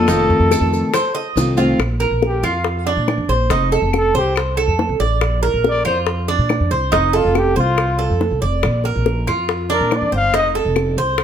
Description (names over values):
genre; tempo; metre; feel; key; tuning
latin, Cuban son and guajira; 140 BPM; 4/4; straight; Bb major; A4 = 440 Hz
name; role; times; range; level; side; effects
breathy trumpet; melody; 0.0-10.5 s; Eb4 to F5; -20 LUFS; left 2 dB; plate reverb
picked steel-string acoustic guitar; accompaniment; 0.0-1.8 s; C3 to F4; -18 LUFS; left 2 dB; none
Cuban tres; arpeggios; 0.0-11.2 s; D4 to Eb5; -19 LUFS; right 4 dB; none
upright bass; bass; 0.0-11.2 s; F1 to Bb2; -20 LUFS; equal; none
bongos; percussion; 0.1-11.2 s; none; -23 LUFS; left 6 dB; none
maracas; percussion; 0.1-1.8 s; none; -31 LUFS; left 4 dB; none
claves; percussion; 0.5-11.2 s; none; -30 LUFS; left 4 dB; none
room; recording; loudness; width
moderate large studio reverb, RT60 0.9 s; none; -15 LUFS; side -9 dB against mid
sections
0.0-1.8 A section; 1.8-11.2 B section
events
trumpet solo 1.8-11.2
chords
0.1 F7; 1.8 Bb; 3.5 F7; 5.2 Bb; 6.9 F7; 8.6 Bb; 10.3 F7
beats
| 0.09 0.52 0.94 1.37 | 1.80 2.23 2.65 3.08 | 3.51 3.94 4.36 4.79 | 5.22 5.64 6.07 6.50 | 6.93 7.35 7.78 8.21 | 8.63 9.06 9.49 9.91 | 10.34 10.77 11.19